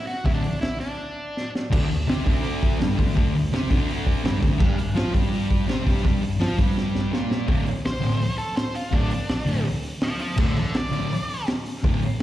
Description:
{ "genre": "garage rock duo or trio", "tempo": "166 BPM", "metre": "4/4", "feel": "straight", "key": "unclear", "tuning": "A4 = 440 Hz", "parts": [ { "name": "octave-fuzz lead guitar", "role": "melody", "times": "0.0-1.5, 7.9-11.5 s", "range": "D4 to F5", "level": "-30 LUFS", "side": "equal", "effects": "distortion, slapback echo" }, { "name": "crunchy breakbeat drum kit", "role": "drums", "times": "0.1-12.2 s", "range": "crash cymbal, hi-hat, kick drum, snare drum", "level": "-24 LUFS", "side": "equal", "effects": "none" }, { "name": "thick fuzz guitar", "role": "riff", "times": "0.2-12.0 s", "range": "D2 to F4", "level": "-24 LUFS", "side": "equal", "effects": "distortion, slapback echo" } ], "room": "light reverb, small room ambience", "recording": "live gig heard through the venue's PA, recital hall reverb", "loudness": "-21 LUFS", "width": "side -14 dB against mid", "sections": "0.0-1.7 A section; 1.7-7.5 B section; 7.5-12.2 C section", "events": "break 1.0-1.7; drum fill 1.4-1.7, 6.8-7.5; lead electric guitar solo 7.5-12.2", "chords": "0.0 D5; 1.7 D7sus4; 4.6 Gm7; 7.5 D5", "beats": "| 0.27 0.63 1.00 1.36 | 1.72 2.08 2.44 2.81 | 3.17 3.52 3.88 4.24 | 4.60 4.96 5.32 5.68 | 6.04 6.40 6.76 7.12 | 7.49 7.85 8.21 8.57 | 8.94 9.30 9.66 10.03 | 10.39 10.75 11.12 11.48 | 11.85 12.21" }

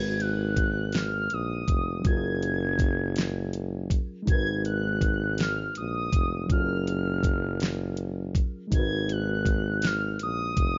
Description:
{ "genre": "slow six-eight R&B", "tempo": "54 BPM (dotted quarters)", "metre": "6/8", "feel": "straight", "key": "G# dorian", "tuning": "A4 = 440 Hz", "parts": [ { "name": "mellow horn-like synth lead", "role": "melody", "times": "0.0-10.8 s", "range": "D#6 to G#6", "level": "-34 LUFS", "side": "equal", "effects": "chorus, phaser, slapback echo" }, { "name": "mellow reed electric piano", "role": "accompaniment", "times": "0.0-10.8 s", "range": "F#3 to B4", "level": "-37 LUFS", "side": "equal", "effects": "none" }, { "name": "warm tuba", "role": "bass", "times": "0.0-10.8 s", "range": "E#1 to A#1", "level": "-32 LUFS", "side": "equal", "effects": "none" }, { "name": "smooth R&B drum kit", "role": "drums", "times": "0.2-10.7 s", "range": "hi-hat, kick drum, snare drum", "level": "-29 LUFS", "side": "equal", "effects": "none" } ], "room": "digital ambience", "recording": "nothing above 7.5 kHz", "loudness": "-27 LUFS", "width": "mono", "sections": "0.0-10.8 A section", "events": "none", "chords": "0.0 G#m7; 2.0 F#maj9; 4.3 G#m7; 6.5 F#maj9; 8.7 G#m7", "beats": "0.94 | 2.05 3.16 | 4.27 5.38 | 6.49 7.61 | 8.72 9.83" }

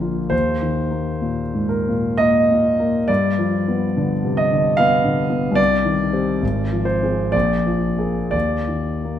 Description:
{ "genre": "classical, romantic nocturne for solo piano", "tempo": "57-76 BPM", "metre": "3/4", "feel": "rubato", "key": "Eb major", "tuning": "A4 = 440 Hz", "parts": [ { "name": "warm concert grand piano", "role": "solo", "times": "0.0-9.2 s", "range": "Ab1 to F5", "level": "-17 LUFS", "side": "equal", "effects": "none" } ], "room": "wet scoring stage reverb, RT60 1.8 s", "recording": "none", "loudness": "-17 LUFS", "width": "side -10 dB against mid", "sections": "0.0-9.2 A section", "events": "none", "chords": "0.3 Eb5; 3.1 G7; 5.6 Cm; 6.4 Fm/Ab; 7.3 Bb7; 8.3 Eb5", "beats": "| 0.32 1.22 2.20 | 3.09 3.96 4.79 | 5.58 6.42 7.34 | 8.34" }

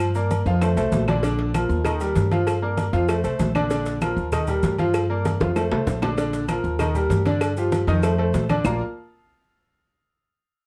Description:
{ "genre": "latin, salsa", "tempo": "194 BPM", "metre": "4/4", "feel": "straight", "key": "Bb major", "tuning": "A4 = 439 Hz", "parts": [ { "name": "bright concert grand piano", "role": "accompaniment", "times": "0.0-8.8 s", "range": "D3 to Bb5", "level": "-26 LUFS", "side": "equal", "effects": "none" }, { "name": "upright bass", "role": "bass", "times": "0.0-8.8 s", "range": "Bb1 to G2", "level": "-26 LUFS", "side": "equal", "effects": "none" }, { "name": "agogo bells and timbales", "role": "percussion", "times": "0.0-8.7 s", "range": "none", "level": "-33 LUFS", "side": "equal", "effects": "none" }, { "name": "claves", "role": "percussion", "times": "0.0-8.7 s", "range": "none", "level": "-38 LUFS", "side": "equal", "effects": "none" }, { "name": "congas", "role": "percussion", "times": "0.0-8.7 s", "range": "none", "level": "-30 LUFS", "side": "equal", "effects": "none" }, { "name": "maracas", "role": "percussion", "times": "0.1-8.7 s", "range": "none", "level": "-48 LUFS", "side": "equal", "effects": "none" }, { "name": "cowbell and bongos", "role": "percussion", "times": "1.2-8.7 s", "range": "none", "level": "-33 LUFS", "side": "equal", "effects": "none" } ], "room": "light reverb", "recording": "worn, warbling old tape, cassette tape, warbly pitch drift", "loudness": "-22 LUFS", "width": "mono", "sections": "0.0-6.2 A section; 6.2-8.7 B section; 8.7-9.9 C section", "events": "drum fill 0.5-1.2, 5.2-6.2", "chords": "0.0 Gm7; 0.6 F; 1.2 Bb; 1.9 Eb; 2.5 Gm7; 3.1 F; 3.7 Bb; 4.3 Eb; 4.9 Gm7; 5.6 F; 6.2 Bb; 6.8 Eb; 7.4 G5; 8.0 F; 8.7 Bb5", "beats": "| 0.00 0.31 0.62 0.93 | 1.23 1.54 1.85 2.16 | 2.47 2.78 3.09 3.40 | 3.71 4.01 4.32 4.63 | 4.94 5.25 5.56 5.87 | 6.17 6.48 6.79 7.10 | 7.41 7.72 8.03 8.34 | 8.65" }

